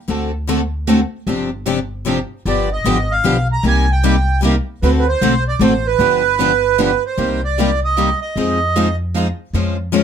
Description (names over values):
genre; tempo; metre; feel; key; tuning
acoustic string swing (jazz manouche); 152 BPM; 3/4; swing 62% on 8ths; C minor; A4 = 441 Hz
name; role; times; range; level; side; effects
picked steel-string acoustic guitar; accompaniment; 0.1-10.0 s; C3 to C5; -19 LUFS; left 7 dB; none
picked steel-string acoustic guitar; accompaniment; 0.1-10.0 s; C3 to C5; -20 LUFS; right 4 dB; none
upright bass; bass; 0.1-10.0 s; G1 to F2; -19 LUFS; equal; none
accordion; melody; 2.5-9.0 s; B4 to Bb5; -17 LUFS; right 6 dB; none
room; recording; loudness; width
light reverb; close, detailed microphones; -14 LUFS; side -8 dB against mid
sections
0.0-7.2 A section; 7.2-10.0 B section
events
none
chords
0.1 D7; 1.3 G7sus4; 2.5 G7; 3.6 Cm7; 4.8 D7; 6.0 G7; 7.2 Cm7; 8.4 Fm7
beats
| 0.09 0.49 0.88 | 1.28 1.67 2.06 | 2.46 2.85 3.25 | 3.64 4.04 4.43 | 4.82 5.21 5.61 | 6.00 6.39 6.79 | 7.18 7.57 7.97 | 8.36 8.75 9.15 | 9.54 9.93